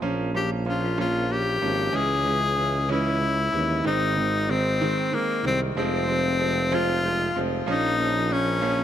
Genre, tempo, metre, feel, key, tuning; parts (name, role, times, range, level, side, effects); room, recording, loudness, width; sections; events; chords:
six-eight pop ballad; 63 BPM (dotted quarters); 6/8; straight; Ab major; A4 = 440 Hz
clear concert grand piano; accompaniment; 0.0-8.8 s; Eb3 to Db4; -28 LUFS; right 4 dB
mellow tuba; bass; 0.0-8.8 s; F1 to Eb2; -28 LUFS; equal
breathy tenor saxophone; melody; 0.4-8.8 s; Bb3 to Ab4; -24 LUFS; left 3 dB; ping-pong delay
small room reverb; -21 LUFS; side -10 dB against mid
0.0-3.9 A section; 3.9-8.8 B section
0.0 Bbm; 1.9 Dbm; 3.9 Ab; 5.8 Fm; 7.7 Bbm